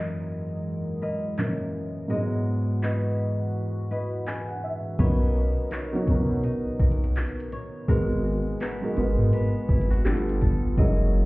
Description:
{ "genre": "contemporary R&B", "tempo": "83 BPM", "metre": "4/4", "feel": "swing 58% on 16ths", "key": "unclear", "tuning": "A4 = 439 Hz", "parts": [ { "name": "felt-muted upright piano", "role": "accompaniment", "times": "0.0-11.3 s", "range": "F#2 to G#5", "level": "-29 LUFS", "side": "right 1 dB", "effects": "none" }, { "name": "chorused pulse-width pad", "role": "sustained chords", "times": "0.0-11.3 s", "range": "F#2 to D#5", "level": "-32 LUFS", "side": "equal", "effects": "sidechain pumping" }, { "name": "flamenco guitar", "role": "arpeggios", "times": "0.0-11.3 s", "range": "F#3 to D#5", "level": "-34 LUFS", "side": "left 2 dB", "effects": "ping-pong delay" }, { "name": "smooth R&B drum kit", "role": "drums", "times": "1.4-11.0 s", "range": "handclaps, hi-hat, kick drum", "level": "-25 LUFS", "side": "equal", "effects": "none" }, { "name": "smooth synth bass", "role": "bass", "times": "5.0-11.3 s", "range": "F#1 to B2", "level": "-24 LUFS", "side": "equal", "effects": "none" } ], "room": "little or no reverb", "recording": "heard muffled through a wall, club reverb, EQ", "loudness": "-23 LUFS", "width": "side -21 dB against mid", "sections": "0.0-5.0 A section; 5.0-11.3 B section", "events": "kick muted 2.1-5.0; felt piano fill 3.9-5.0", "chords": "0.0 F#13; 2.1 Emaj7/G#; 5.0 Bmaj9; 7.9 G#m9; 10.1 G9", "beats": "0.66 1.38 | 2.10 2.83 3.55 4.27 | 4.99 5.72 6.44 7.16 | 7.88 8.61 9.33 10.05 | 10.78" }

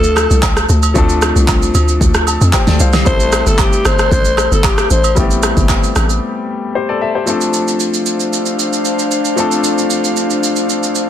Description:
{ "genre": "amapiano", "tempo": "114 BPM", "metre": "4/4", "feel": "straight", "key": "D minor", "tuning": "A4 = 441 Hz", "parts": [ { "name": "breathy alto saxophone", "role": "melody", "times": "0.0-5.2 s", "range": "G4 to C5", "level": "-18 LUFS", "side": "left 2 dB", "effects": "ping-pong delay" }, { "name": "clear concert grand piano", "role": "accompaniment", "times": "0.0-11.1 s", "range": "F3 to A5", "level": "-18 LUFS", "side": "left 3 dB", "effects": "none" }, { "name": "hollow log drum bass", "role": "bass", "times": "0.0-6.2 s", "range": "G1 to F2", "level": "-14 LUFS", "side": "equal", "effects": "none" }, { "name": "deep house drum kit", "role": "drums", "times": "0.0-11.1 s", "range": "handclaps, kick drum, rim click, shaker, snare drum", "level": "-16 LUFS", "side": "right 1 dB", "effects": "soft clipping on snare" }, { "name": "agogo bells and woodblock", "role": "percussion", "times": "0.2-6.1 s", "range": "none", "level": "-23 LUFS", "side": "right 9 dB", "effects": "none" }, { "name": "airy breathy pad", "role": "sustained chords", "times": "7.6-11.1 s", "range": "D4 to F5", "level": "-18 LUFS", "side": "left 2 dB", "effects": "chorus" } ], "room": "light reverb, digital ambience", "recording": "dense, heavily limited modern master", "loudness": "-11 LUFS", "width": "side -10 dB against mid", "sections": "0.0-7.3 A section; 7.3-11.1 B section", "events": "drop 0.0-7.3; grand piano fill 2.0-3.1; break 6.2-7.3", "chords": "0.0 Dm7; 3.1 Am7; 7.3 Dm7", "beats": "0.43 | 0.96 1.48 2.01 2.54 | 3.06 3.59 4.12 4.64 | 5.17 5.69 6.22 6.75 | 7.27 7.80 8.33 8.85 | 9.38 9.90 10.43 10.96" }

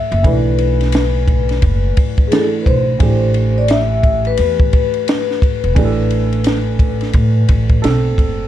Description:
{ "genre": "hip hop, jazz-hop", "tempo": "87 BPM", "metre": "4/4", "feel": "swing 62% on 16ths", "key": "unclear", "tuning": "A4 = 440 Hz", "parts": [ { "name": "vibraphone with soft mallets", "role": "melody", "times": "0.0-7.8 s", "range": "G#4 to E5", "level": "-19 LUFS", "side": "left 6 dB", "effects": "none" }, { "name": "dark upright piano", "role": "accompaniment", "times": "0.0-8.5 s", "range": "E3 to A4", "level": "-22 LUFS", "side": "right 8 dB", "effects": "none" }, { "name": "upright bass", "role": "bass", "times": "0.1-8.5 s", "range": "E1 to A2", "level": "-16 LUFS", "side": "equal", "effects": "none" }, { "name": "compact cocktail drum kit", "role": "drums", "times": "0.1-8.4 s", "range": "hi-hat, kick drum, ride cymbal, snare drum", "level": "-16 LUFS", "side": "equal", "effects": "none" } ], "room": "light reverb", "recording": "dark, warm production, faint mains hum", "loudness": "-12 LUFS", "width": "side -12 dB against mid", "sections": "0.0-8.5 A section", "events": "none", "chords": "0.0 Bm7; 3.0 A7sus2", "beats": "| 0.24 0.94 1.62 2.31 | 3.00 3.69 4.38 5.07 | 5.76 6.45 7.14 7.83" }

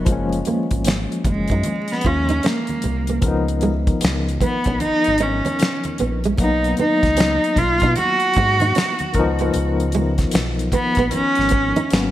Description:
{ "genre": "R&B, neo-soul", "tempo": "76 BPM", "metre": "4/4", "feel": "swing 64% on 16ths", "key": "unclear", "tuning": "A4 = 439 Hz", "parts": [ { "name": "nylon-string guitar", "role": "second line", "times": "0.0-11.9 s", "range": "G#3 to F#4", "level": "-26 LUFS", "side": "right 4 dB", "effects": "none" }, { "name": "barky tine electric piano", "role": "accompaniment", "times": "0.0-12.1 s", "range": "D#3 to A#4", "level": "-24 LUFS", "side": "left 3 dB", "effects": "medium tremolo" }, { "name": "round analog bass", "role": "bass", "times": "0.0-12.1 s", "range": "F#1 to B2", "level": "-23 LUFS", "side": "equal", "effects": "none" }, { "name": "damped 70s drum kit", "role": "drums", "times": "0.1-12.1 s", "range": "finger snaps, hi-hat, kick drum, snare drum", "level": "-22 LUFS", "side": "equal", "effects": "gated reverb" }, { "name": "congas", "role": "percussion", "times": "0.1-11.9 s", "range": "none", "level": "-32 LUFS", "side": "right 1 dB", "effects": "none" }, { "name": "clear cello", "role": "melody", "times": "1.3-11.9 s", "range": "G#3 to F#4", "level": "-20 LUFS", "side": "right 1 dB", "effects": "digital delay" } ], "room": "light reverb, studio reverb", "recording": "bright 1980s-style digital production, vinyl crackle", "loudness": "-16 LUFS", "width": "side -13 dB against mid", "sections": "0.1-12.1 A section", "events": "none", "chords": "0.1 F#maj9; 3.2 C#13; 6.4 G#m9/B; 9.1 C#13", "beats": "| 0.07 0.86 1.65 2.44 | 3.23 4.02 4.81 5.59 | 6.38 7.17 7.96 8.75 | 9.54 10.33 11.12 11.91" }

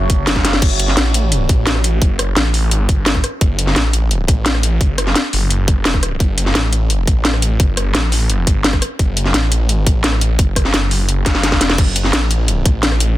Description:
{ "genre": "dark technical drum and bass", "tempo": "172 BPM", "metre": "4/4", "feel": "straight", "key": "F# phrygian", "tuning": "A4 = 444 Hz", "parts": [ { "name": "deep dark ambient pad", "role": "sustained chords", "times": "0.0-0.6 s", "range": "F#4 to C#6", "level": "-27 LUFS", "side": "right 4 dB", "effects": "chorus, built-in reverb, sidechain pumping" }, { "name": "snarling distorted saw bass", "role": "bass", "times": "0.0-13.2 s", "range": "E1 to A1", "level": "-16 LUFS", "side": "equal", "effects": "overdrive, sidechain pumping" }, { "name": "drum and bass drum kit", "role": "drums", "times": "0.1-13.1 s", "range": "crash cymbal, hi-hat, rim click, snare drum", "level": "-17 LUFS", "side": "left 1 dB", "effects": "none" }, { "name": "electronic kick drum", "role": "drums", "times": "0.1-12.7 s", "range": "none", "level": "-15 LUFS", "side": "equal", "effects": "none" } ], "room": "digital ambience", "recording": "dense, heavily limited modern master", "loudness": "-13 LUFS", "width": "side -15 dB against mid", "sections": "0.6-13.2 A section", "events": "drum fill 0.4, 11.3-11.8; drop 0.6-13.2", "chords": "0.0 F#5; 0.6 F#m", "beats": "0.27 | 0.62 0.97 1.32 1.67 | 2.02 2.37 2.71 3.06 | 3.41 3.76 4.11 4.46 | 4.81 5.16 5.50 5.85 | 6.20 6.55 6.90 7.25 | 7.60 7.95 8.29 8.64 | 8.99 9.34 9.69 10.04 | 10.39 10.74 11.09 11.44 | 11.78 12.13 12.48 12.83" }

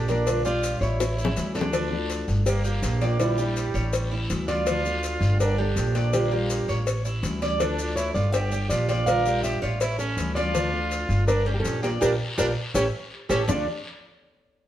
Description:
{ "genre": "latin, Cuban son and guajira", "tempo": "163 BPM", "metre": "4/4", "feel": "straight", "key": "D harmonic minor", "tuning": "A4 = 443 Hz", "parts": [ { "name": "nylon-string guitar", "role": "melody", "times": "0.0-13.7 s", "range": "D4 to F5", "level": "-29 LUFS", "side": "right 1 dB", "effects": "none" }, { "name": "bright trumpet", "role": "second line", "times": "0.0-13.7 s", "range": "G3 to Bb4", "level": "-32 LUFS", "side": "right 2 dB", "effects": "none" }, { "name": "fingerpicked steel-string acoustic guitar", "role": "accompaniment", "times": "0.0-13.6 s", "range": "D3 to G4", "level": "-32 LUFS", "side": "left 3 dB", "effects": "none" }, { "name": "Cuban tres", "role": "arpeggios", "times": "0.0-13.7 s", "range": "D4 to D5", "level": "-31 LUFS", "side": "right 4 dB", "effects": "none" }, { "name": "upright bass", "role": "bass", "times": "0.0-13.7 s", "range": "G1 to D2", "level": "-26 LUFS", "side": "equal", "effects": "none" }, { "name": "cowbell and bongos", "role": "percussion", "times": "0.1-13.6 s", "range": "none", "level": "-31 LUFS", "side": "left 4 dB", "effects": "none" }, { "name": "guiro", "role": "percussion", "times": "0.1-13.6 s", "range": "none", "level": "-40 LUFS", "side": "left 2 dB", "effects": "none" }, { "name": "maracas", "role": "percussion", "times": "0.1-13.6 s", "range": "none", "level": "-40 LUFS", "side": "left 5 dB", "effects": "none" } ], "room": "moderate stone room reverb, RT60 1.1 s", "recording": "band playing live in one room", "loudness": "-22 LUFS", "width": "side -12 dB against mid", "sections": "0.0-1.7 A section; 1.7-13.5 A section; 13.5-14.7 B section", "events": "drum fill 1.0-1.7, 12.9-13.5; band accent 12.0-13.5", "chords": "0.3 Bb6; 1.0 A7; 1.7 Dmadd9; 2.5 Gm7; 3.2 Bb6; 3.9 A7; 4.7 Dmadd9; 5.4 Gm7; 6.1 Bb6; 6.9 A7; 7.6 Dmadd9; 8.3 Gm7; 9.1 Bb6; 9.8 A7; 10.5 Dmadd9; 11.3 Gm7; 12.0 Bb6; 12.7 A7; 13.5 D5", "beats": "| 0.27 0.63 1.00 1.37 | 1.73 2.10 2.47 2.83 | 3.20 3.57 3.93 4.30 | 4.67 5.03 5.40 5.77 | 6.13 6.50 6.87 7.24 | 7.60 7.97 8.34 8.71 | 9.07 9.44 9.81 10.17 | 10.54 10.91 11.28 11.64 | 12.01 12.38 12.75 13.11 | 13.48" }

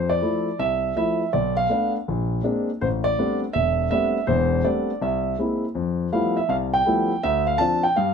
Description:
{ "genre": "solo jazz", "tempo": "163 BPM", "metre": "4/4", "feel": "swing 64% on 8ths", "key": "unclear", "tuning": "A4 = 439 Hz", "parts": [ { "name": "warm concert grand piano", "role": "solo", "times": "0.0-8.1 s", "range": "E1 to A5", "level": "-20 LUFS", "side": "equal", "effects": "none" } ], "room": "moderate studio ambience, RT60 0.5 s", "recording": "minimal, uncompressed stereo recording", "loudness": "-20 LUFS", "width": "side -6 dB against mid", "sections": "0.0-5.8 A section; 5.8-8.1 B section", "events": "none", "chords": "0.0 Fmaj7; 1.3 Bm7b5; 2.1 Bb9; 2.8 Am11; 5.0 Caug7; 5.8 Fmaj9#11; 7.2 Dm7", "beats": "0.23 0.60 0.96 | 1.33 1.70 2.07 2.44 | 2.81 3.18 3.54 3.91 | 4.28 4.65 5.02 5.38 | 5.75 6.12 6.49 6.86 | 7.22 7.59 7.96" }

